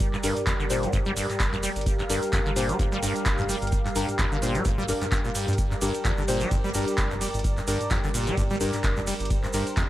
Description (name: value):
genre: acid house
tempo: 129 BPM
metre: 4/4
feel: swing 56% on 16ths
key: G minor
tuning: A4 = 440 Hz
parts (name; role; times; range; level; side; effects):
- warm analog pad; sustained chords; 0.0-9.9 s; G3 to F5; -32 LUFS; right 1 dB; chorus, sidechain pumping
- deep mellow chord stab; stabs; 0.0-9.9 s; D4 to C5; -32 LUFS; left 2 dB; chorus, tape echo
- round analog bass; bass; 0.0-9.6 s; F1 to G2; -33 LUFS; equal; sidechain pumping
- booming analog drum machine; drums; 0.0-9.9 s; handclaps, hi-hat, ride cymbal, toms; -32 LUFS; right 1 dB; none
- electronic kick drum; drums; 0.0-9.9 s; none; -27 LUFS; equal; none
- tube shaker; percussion; 0.0-9.9 s; none; -37 LUFS; right 2 dB; none
- acid bass, saw; riff; 0.1-9.8 s; F2 to G3; -30 LUFS; equal; lush chorus, tape echo
room: little or no reverb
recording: dry, gritty hardware recording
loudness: -23 LUFS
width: side -14 dB against mid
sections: 0.0-9.9 A section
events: none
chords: 0.0 Gm